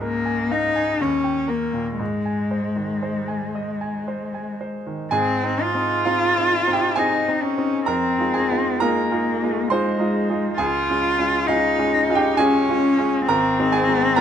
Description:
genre	classical, romantic duo for cello and grand piano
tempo	56-69 BPM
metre	3/4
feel	rubato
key	Ab major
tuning	A4 = 439 Hz
part	rich cello	melody	0.0-14.2 s	Ab3 to F4	-21 LUFS	left 2 dB	none
part	bright grand piano	accompaniment	0.0-14.2 s	Ab1 to C6	-22 LUFS	right 1 dB	none
room	light reverb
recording	close, detailed microphones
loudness	-18 LUFS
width	side -8 dB against mid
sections	0.0-5.1 A section; 5.1-14.2 B section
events	none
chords	0.0 Bbm7/Db; 1.0 Eb7; 2.0 Ab; 7.9 Fm7; 10.6 Db; 13.3 Ab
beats	0.03 1.01 | 2.00 3.04 4.10 | 5.13 6.07 6.98 | 7.90 8.82 9.72 | 10.60 11.49 12.39 | 13.29 14.17

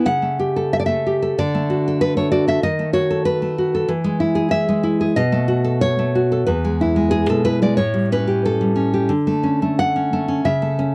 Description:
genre	romantic piece for solo classical guitar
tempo	92 BPM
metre	4/4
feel	uneven beats, rubato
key	A major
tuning	A4 = 440 Hz
part	nylon-string guitar	solo	0.0-10.9 s	E2 to F#5	-19 LUFS	equal	none
room	little or no reverb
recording	dry, close 1970s-style studio recording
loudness	-19 LUFS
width	mono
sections	0.0-10.9 A section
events	none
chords	0.1 A7/C#; 1.4 D; 2.6 B7/D#; 3.9 E; 5.2 B7; 6.5 E; 7.8 A7; 9.1 Dmaj7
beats	| 0.06 0.71 1.38 2.01 | 2.62 3.24 3.90 4.53 | 5.17 5.82 6.49 7.14 | 7.78 8.43 9.12 9.79 | 10.45

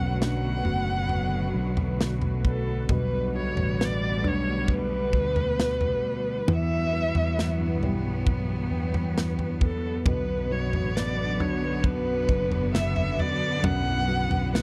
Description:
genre	pop ballad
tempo	67 BPM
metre	4/4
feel	straight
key	B minor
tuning	A4 = 442 Hz
part	dark violin	melody	0.0-14.6 s	A4 to F#5	-32 LUFS	equal	none
part	clear symphonic cello section	second line	0.0-14.6 s	D2 to B3	-34 LUFS	equal	none
part	dark upright piano	accompaniment	0.0-14.6 s	F#2 to F#4	-36 LUFS	equal	none
part	warm analog pad	sustained chords	0.0-14.6 s	D3 to G5	-38 LUFS	equal	chorus
part	fingered electric bass	bass	0.0-14.6 s	F#1 to E2	-31 LUFS	equal	none
part	modern studio drum kit	drums	0.2-14.6 s	kick drum, snare drum, toms	-30 LUFS	equal	none
room	little or no reverb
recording	dry, close 1970s-style studio recording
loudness	-26 LUFS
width	mono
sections	0.0-14.6 A section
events	none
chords	0.0 Bm; 2.9 Gmaj7; 6.5 Emadd9; 10.1 Bm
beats	0.20 1.10 2.00 | 2.89 3.79 4.68 5.58 | 6.47 7.37 8.27 9.16 | 10.06 10.95 11.85 12.74 | 13.64 14.53

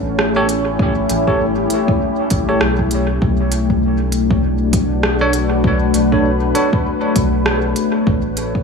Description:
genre	ambient dub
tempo	99 BPM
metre	4/4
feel	swing 59% on 16ths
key	B minor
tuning	A4 = 444 Hz
part	deep dark ambient pad	sustained chords	0.0-8.6 s	A3 to C#5	-17 LUFS	left 2 dB	chorus, built-in reverb
part	soft dub sub bass	bass	0.0-8.6 s	A1 to B1	-20 LUFS	equal	none
part	organic electronic drum kit	drums	0.2-8.5 s	hi-hat, rim click	-22 LUFS	right 1 dB	overdrive, dub echo
part	bell-like tine electric piano	stabs	0.4-6.7 s	D4 to C#5	-22 LUFS	right 2 dB	dub echo
part	electronic kick drum	drums	0.8-8.6 s	none	-19 LUFS	equal	none
room	moderate echo chamber reverb, RT60 2.4 s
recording	small room reverb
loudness	-14 LUFS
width	side -5 dB against mid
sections	0.0-8.6 A section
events	none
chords	0.0 A7; 3.2 Bm9; 8.1 A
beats	0.18 | 0.79 1.40 2.00 2.61 | 3.22 3.82 4.43 5.03 | 5.64 6.25 6.85 7.46 | 8.06

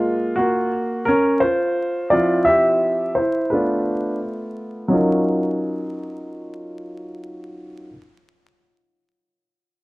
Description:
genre	hip hop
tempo	86 BPM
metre	4/4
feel	swing 59% on 16ths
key	unclear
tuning	A4 = 440 Hz
part	warm upright piano	accompaniment	0.0-7.9 s	F3 to E5	-19 LUFS	equal	low-pass filter
room	light reverb, digital ambience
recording	worn, warbling old tape, cassette tape, vinyl crackle, warbly pitch drift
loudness	-17 LUFS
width	side -21 dB against mid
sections	0.0-4.9 A section; 4.9-7.7 B section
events	upright piano solo 0.0-4.9; filter sweep on upright piano 0.0-4.9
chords	0.0 Gbmaj9; 2.1 Dm11/F; 3.5 Bm7b5/A; 4.9 Ebm9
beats	0.03 0.72 1.42 | 2.12 2.82 3.52 4.21 | 4.91 5.61 6.30 7.00

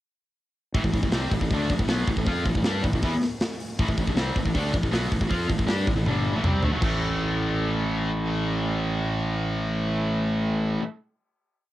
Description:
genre	heavy metal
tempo	158 BPM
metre	4/4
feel	straight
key	A minor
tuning	A4 = 437 Hz
part	high-gain distorted guitar	riff	0.7-10.8 s	G2 to G4	-26 LUFS	equal	distortion, cassette tape
part	fuzz fingered electric bass	bass	0.7-10.8 s	G1 to G2	-27 LUFS	equal	overdrive
part	tight metal drum kit	drums	0.7-6.9 s	crash cymbal, hi-hat, kick drum, snare drum, toms	-26 LUFS	equal	cassette tape
room	little or no reverb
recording	home recording on cassette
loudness	-23 LUFS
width	side -15 dB against mid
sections	0.7-6.8 riff; 6.8-9.9 final chord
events	drum fill 6.1-6.8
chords	0.7 Am; 6.8 A5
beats	| 0.75 1.13 1.51 1.89 | 2.27 2.65 3.03 3.41 | 3.79 4.17 4.55 4.93 | 5.30 5.68 6.06 6.44 | 6.82 7.20 7.58 7.96 | 8.34 8.72 9.10 9.48

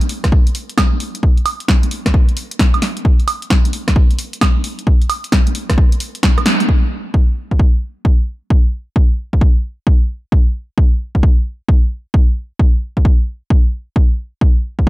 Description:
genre	UK garage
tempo	132 BPM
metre	4/4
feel	swing 64% on 16ths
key	none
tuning	none
part	punchy analog drum machine	drums	0.0-6.8 s	crash cymbal, hi-hat, rim click, snare drum, woodblock	-18 LUFS	right 1 dB	low-pass filter on hats, low-pass filter on snare, low-pass filter on perc, low-pass filter on cymbals
part	electronic kick drum	drums	0.2-14.9 s	none	-12 LUFS	equal	none
room	little or no reverb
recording	dark, warm production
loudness	-13 LUFS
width	side -18 dB against mid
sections	0.0-6.7 A section; 6.7-14.9 B section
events	drum fill 6.5; band accent 6.5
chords	none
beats	0.32 0.78 | 1.23 1.69 2.14 2.60 | 3.05 3.50 3.96 4.41 | 4.87 5.32 5.78 6.23 | 6.69 7.14 7.59 8.05 | 8.50 8.96 9.41 9.87 | 10.32 10.78 11.23 11.69 | 12.14 12.60 13.05 13.50 | 13.96 14.41 14.87

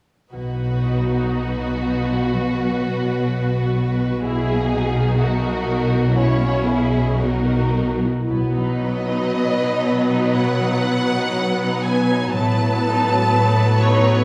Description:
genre	classical, slow romantic movement for symphony orchestra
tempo	60 BPM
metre	4/4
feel	uneven beats, rubato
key	B major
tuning	A4 = 441 Hz
part	rich studio violin section	melody	0.3-14.2 s	G#4 to A5	-28 LUFS	equal	none
part	warm studio violin section	second line	0.3-14.2 s	A3 to B4	-28 LUFS	equal	none
part	rich studio viola section	accompaniment	0.3-14.2 s	F#3 to F#4	-28 LUFS	equal	none
part	concert harp	arpeggios	0.3-14.2 s	A2 to E5	-29 LUFS	equal	none
part	warm studio cello section	bass	0.3-14.2 s	A2 to B2	-24 LUFS	equal	none
part	warm studio double bass section	bass	0.3-13.3 s	A1 to B1	-26 LUFS	equal	none
room	wet recital hall reverb, RT60 1.4 s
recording	recorded in a church or concert hall, small room ambience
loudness	-20 LUFS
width	mono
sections	0.3-8.3 A section; 8.3-14.2 B section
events	none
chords	0.3 B; 4.2 F#7/B; 8.3 B; 12.3 B7/A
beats	| 0.32 1.35 2.33 3.29 | 4.24 5.19 6.14 7.18 | 8.29 9.32 10.33 11.34 | 12.35 13.33

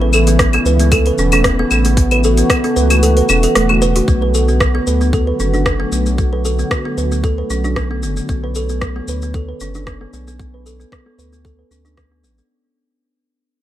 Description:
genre	organic downtempo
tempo	114 BPM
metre	4/4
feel	swing 53% on 16ths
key	B minor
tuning	A4 = 443 Hz
part	warm analog pad	sustained chords	0.0-12.5 s	C#3 to C#5	-21 LUFS	equal	chorus, sidechain pumping
part	kalimba	arpeggios	0.0-12.5 s	A3 to B4	-18 LUFS	right 1 dB	low-pass filter, tape echo
part	warm sub bass	bass	0.0-12.4 s	E1 to D2	-16 LUFS	equal	none
part	afro-pop drum kit	drums	0.1-12.5 s	claves, hi-hat, rim click, shaker	-19 LUFS	left 1 dB	overdrive
part	electronic kick drum	drums	0.4-12.1 s	none	-18 LUFS	equal	none
room	light reverb, digital ambience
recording	none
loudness	-12 LUFS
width	side -12 dB against mid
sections	0.0-4.1 A section; 4.1-12.5 B section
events	kick drops out 3.0-4.1; fade-out 4.1-12.5; filter sweep on kalimba 4.1-12.5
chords	0.0 Aadd9; 4.1 Bm7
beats	0.39 0.92 1.45 | 1.97 2.50 3.02 3.55 | 4.08 4.60 5.13 5.66 | 6.18 6.71 7.24 7.76 | 8.29 8.81 9.34 9.87 | 10.39 10.92 11.45 11.97

